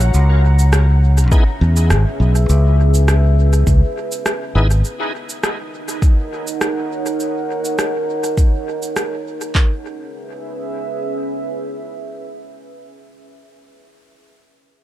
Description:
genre	ambient dub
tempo	102 BPM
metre	4/4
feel	straight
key	C# dorian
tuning	A4 = 439 Hz
part	deep dark ambient pad	sustained chords	0.0-12.7 s	C#4 to F#5	-24 LUFS	right 1 dB	chorus, built-in reverb
part	fingered electric bass	bass	0.0-4.8 s	G#1 to E2	-11 LUFS	equal	none
part	electronic cabasa and rim click	drums	0.0-9.5 s	none	-24 LUFS	right 1 dB	dub echo
part	bright tonewheel organ	stabs	1.3-4.7 s	B3 to G#4	-28 LUFS	left 1 dB	overdrive, chorus vibrato, slow rotary speaker, dub echo
part	deep house drum kit	drums	1.3-9.7 s	handclaps, kick drum	-13 LUFS	equal	none
room	little or no reverb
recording	none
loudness	-14 LUFS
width	side -13 dB against mid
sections	0.1-9.6 A section; 9.6-11.9 B section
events	none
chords	0.1 C#m7; 4.8 D#m7; 9.6 C#m7

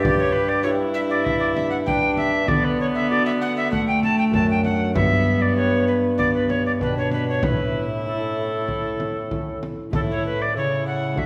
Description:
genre	classical, renaissance-style consort dance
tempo	97 BPM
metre	4/4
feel	straight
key	A mixolydian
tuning	A4 = 440 Hz
part	alto recorder	melody	0.0-11.3 s	A4 to A5	-26 LUFS	equal	none
part	warm viola	second line	0.0-11.3 s	A3 to G4	-27 LUFS	equal	none
part	concert harp	accompaniment	0.0-11.3 s	F#2 to B4	-29 LUFS	equal	none
part	mellow bassoon	bass	0.0-11.3 s	F#2 to D3	-29 LUFS	equal	none
part	frame drum	percussion	0.0-11.3 s	none	-31 LUFS	equal	none
room	wet recital hall reverb, RT60 1.3 s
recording	recorded in a church or concert hall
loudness	-21 LUFS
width	mono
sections	0.0-9.9 A section; 9.9-11.3 B section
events	none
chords	0.0 G; 2.5 D; 5.0 G; 7.4 A

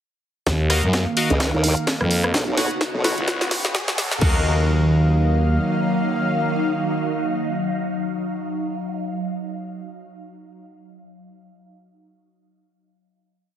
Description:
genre	bass house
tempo	128 BPM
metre	4/4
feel	swing 57% on 16ths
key	Eb minor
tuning	A4 = 439 Hz
part	sweeping resonant pad	sustained chords	1.0-8.7 s	C#3 to F5	-26 LUFS	right 2 dB	chorus, sidechain pumping
part	growling FM bass	bass	0.5-5.6 s	C#2 to Gb2	-19 LUFS	equal	sidechain pumping
part	electronic kick drum	drums	0.5-4.3 s	none	-24 LUFS	equal	overdrive, high-pass filter on kick, high-pass filter on room
part	house drum kit	drums	0.5-4.3 s	crash cymbal, hi-hat, rim click, snare drum	-24 LUFS	equal	overdrive
part	riser	sound effects	2.4-4.2 s	none	-33 LUFS	left 1 dB	none
part	ethereal airy pad	texture	1.8-8.7 s	Gb3 to F5	-27 LUFS	equal	ensemble chorus, built-in reverb, phaser, sidechain pumping
part	band-passed chord stab	stabs	0.7-8.9 s	Gb4 to F#5	-27 LUFS	left 2 dB	phaser, sidechain pumping, tape echo
part	formant-sweep wobble bass	bass	1.3-3.2 s	B1 to Eb2	-21 LUFS	equal	chorus, sidechain pumping
room	light reverb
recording	heavily compressed radio sound, high-pass filter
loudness	-19 LUFS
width	side -10 dB against mid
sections	0.5-4.2 build; 4.2-8.0 final chord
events	build-up 0.5-4.2; drum fill 0.5-4.2; filter sweep 0.5-4.2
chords	0.5 Ebmadd9; 2.3 Bsus2; 4.2 Ebmadd9

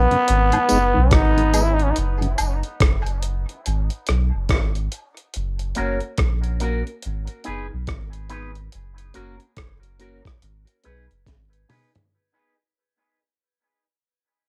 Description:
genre	dub reggae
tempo	71 BPM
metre	4/4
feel	swing 61% on 16ths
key	G# minor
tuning	A4 = 439 Hz
part	growling trombone	melody	0.0-2.0 s	B3 to E4	-23 LUFS	equal	cassette tape, dub echo, plate reverb
part	soft dub sub bass	bass	0.0-11.6 s	F#1 to B1	-24 LUFS	equal	none
part	mellow tonewheel organ	accompaniment	0.1-2.3 s	F#2 to D#4	-29 LUFS	equal	overdrive, chorus vibrato, slow rotary speaker, cassette tape, dub echo
part	breakbeat sampler-style drum kit	drums	0.1-12.1 s	hi-hat, kick drum, rim click, snare drum, toms	-24 LUFS	equal	none
part	woodblock and tambourine	percussion	0.5-2.6 s	none	-32 LUFS	equal	dub echo
part	electric guitar with an envelope filter	accompaniment	5.8-11.9 s	A#3 to B4	-32 LUFS	equal	phaser, cassette tape, dub echo
room	moderate studio reverb, RT60 0.6 s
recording	home recording on cassette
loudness	-21 LUFS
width	mono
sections	0.0-12.1 A section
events	break 0.0-12.1; fade-out 0.0-12.1; drum fill 11.3-12.1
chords	0.3 G#m; 2.0 F#5; 3.6 G#m; 5.3 F#; 7.0 G#m; 8.7 F#; 10.4 G#m

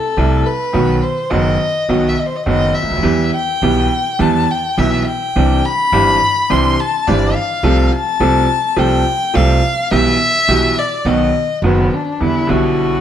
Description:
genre	tango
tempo	105 BPM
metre	4/4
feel	rubato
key	E minor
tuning	A4 = 438 Hz
part	dark violin	second line	0.0-13.0 s	B3 to C6	-16 LUFS	left 3 dB	none
part	bright upright piano	accompaniment	0.2-13.0 s	F#1 to A4	-16 LUFS	right 2 dB	none
part	upright bass	bass	0.2-13.0 s	F#1 to E2	-19 LUFS	right 1 dB	none
room	moderate large studio reverb, RT60 1.1 s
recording	none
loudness	-12 LUFS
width	side -10 dB against mid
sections	0.0-12.2 A section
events	violin solo 0.0-12.2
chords	0.0 Am7/C; 0.7 B; 3.0 Em; 5.4 Cadd9; 7.6 F/C; 9.9 Em/B; 11.0 B; 12.2 Em7

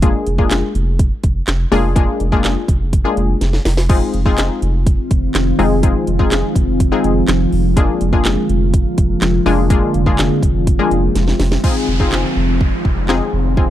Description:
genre	dance-pop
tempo	124 BPM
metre	4/4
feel	straight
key	F dorian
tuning	A4 = 439 Hz
part	analog pluck	accompaniment	0.0-13.7 s	Ab3 to Ab4	-18 LUFS	left 4 dB	chorus, sidechain pumping
part	saturated sub bass	bass	0.0-13.7 s	F1	-18 LUFS	equal	sidechain pumping
part	house drum kit	drums	0.0-13.7 s	crash cymbal, handclaps, hi-hat, kick drum, snare drum	-16 LUFS	equal	none
part	glassy FM pad	sustained chords	4.8-13.7 s	D3 to G5	-19 LUFS	equal	ensemble chorus, built-in reverb, sidechain pumping
part	downlifter	sound effects	11.6-13.7 s	none	-26 LUFS	right 1 dB	none
room	little or no reverb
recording	dry, close 1970s-style studio recording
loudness	-13 LUFS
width	side -12 dB against mid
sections	0.0-11.6 A section; 11.6-13.7 B section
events	drum fill 3.4-3.9, 11.2-11.6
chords	0.0 Bb7/F; 3.9 Fm7; 7.8 Bb7/F; 11.6 Fm7

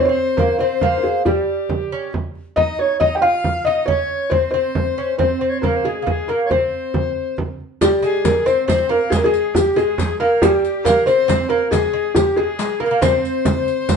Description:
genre	medieval dance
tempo	92 BPM (dotted quarters)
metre	6/8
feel	straight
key	C phrygian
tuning	A4 = 441 Hz
part	felt-muted upright piano	melody	0.0-14.0 s	G4 to G5	-18 LUFS	left 1 dB	none
part	bright reedy bass recorder	second line	0.0-14.0 s	G4 to F5	-23 LUFS	left 7 dB	none
part	lute	second line	0.0-14.0 s	G3 to F4	-24 LUFS	right 5 dB	none
part	frame drum	percussion	0.4-14.0 s	none	-22 LUFS	right 2 dB	none
part	riq	percussion	7.8-14.0 s	none	-26 LUFS	left 2 dB	none
room	moderate studio reverb, RT60 0.7 s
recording	band playing live in one room, nothing above 10.9 kHz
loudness	-16 LUFS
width	side -6 dB against mid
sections	0.0-7.8 A section; 7.8-14.0 B section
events	none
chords	none

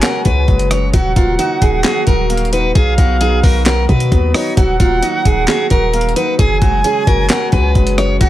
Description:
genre	hip hop, trap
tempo	132 BPM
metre	4/4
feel	half-time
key	unclear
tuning	A4 = 445 Hz
part	picked steel-string acoustic guitar	melody	0.0-8.3 s	F4 to Db5	-17 LUFS	right 1 dB	low-pass filter, tape echo
part	concert flute	second line	0.0-8.3 s	D#5 to Ab5	-21 LUFS	right 3 dB	tape echo
part	dark baby grand piano	accompaniment	0.0-8.3 s	Gb3 to Gb5	-22 LUFS	left 1 dB	low-pass filter
part	glassy FM pad	sustained chords	0.0-8.3 s	Db3 to Gb4	-26 LUFS	left 1 dB	ensemble chorus, built-in reverb
part	breakbeat sampler-style drum kit	drums	0.0-8.3 s	handclaps, hi-hat, kick drum, rim click, snare drum	-15 LUFS	equal	none
part	warm 808-style bass	bass	0.3-8.3 s	Eb1 to B2	-16 LUFS	equal	none
room	small room reverb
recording	none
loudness	-11 LUFS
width	side -14 dB against mid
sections	0.0-8.3 A section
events	none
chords	0.0 Gbsus2; 0.9 Ebm; 2.8 B; 4.6 Ebm; 6.4 Gbsus2

